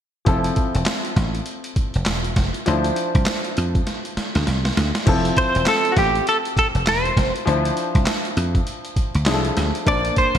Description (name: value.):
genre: R&B, new jack swing.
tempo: 100 BPM.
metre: 4/4.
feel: swing 60% on 16ths.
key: unclear.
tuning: A4 = 439 Hz.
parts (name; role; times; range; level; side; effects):
clear baby grand piano; accompaniment; 0.3-10.4 s; F3 to A5; -25 LUFS; left 2 dB; none.
dry thumbed slap bass; bass; 0.3-10.4 s; E1 to F2; -22 LUFS; equal; none.
boom bap sampler-style drum kit; drums; 0.3-10.4 s; crash cymbal, handclaps, hi-hat, kick drum, snare drum; -22 LUFS; equal; none.
direct-recorded clean electric guitar; melody; 5.4-10.4 s; F#4 to D5; -19 LUFS; equal; analog chorus.
room: moderate lush hall reverb, RT60 2.3 s.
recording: bright 1980s-style digital production.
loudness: -18 LUFS.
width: side -9 dB against mid.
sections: 0.3-5.1 A section; 5.1-10.4 B section.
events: drum fill 3.9-5.1.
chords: 0.3 Fmaj7; 2.7 Dm9; 5.1 Fmaj7; 7.5 Dm9; 9.9 Bbmaj9.